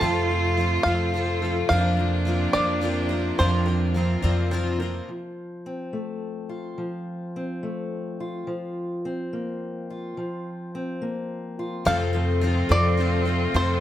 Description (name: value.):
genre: indie folk with a building arrangement.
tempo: 71 BPM (dotted quarters).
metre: 6/8.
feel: straight.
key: F major.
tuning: A4 = 440 Hz.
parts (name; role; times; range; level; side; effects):
bluegrass banjo; melody; 0.0-4.5, 11.9-13.8 s; C5 to A5; -26 LUFS; equal; slapback echo.
rich cello; second line; 0.0-4.8, 11.9-13.8 s; C4 to F4; -28 LUFS; right 5 dB; none.
bright upright piano; accompaniment; 0.0-5.1, 11.9-13.8 s; F1 to D5; -34 LUFS; right 1 dB; none.
picked twelve-string acoustic guitar; accompaniment; 0.0-5.1, 11.9-13.8 s; F3 to Bb4; -29 LUFS; left 5 dB; none.
warm chamber string section; sustained chords; 0.0-5.0, 11.9-13.8 s; C3 to F4; -32 LUFS; left 3 dB; none.
upright bass; bass; 0.0-5.0, 11.9-13.8 s; F2; -24 LUFS; equal; none.
fingerpicked steel-string acoustic guitar; accompaniment; 5.1-13.6 s; F3 to F4; -31 LUFS; left 1 dB; none.
room: light reverb, studio ambience.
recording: none.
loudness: -23 LUFS.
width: side -12 dB against mid.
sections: 0.0-5.1 A section; 5.1-11.9 B section; 11.9-13.8 A section.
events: none.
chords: 0.0 F; 1.7 Bbsus2/F; 5.1 F; 8.5 Bbsus2/F; 11.9 F.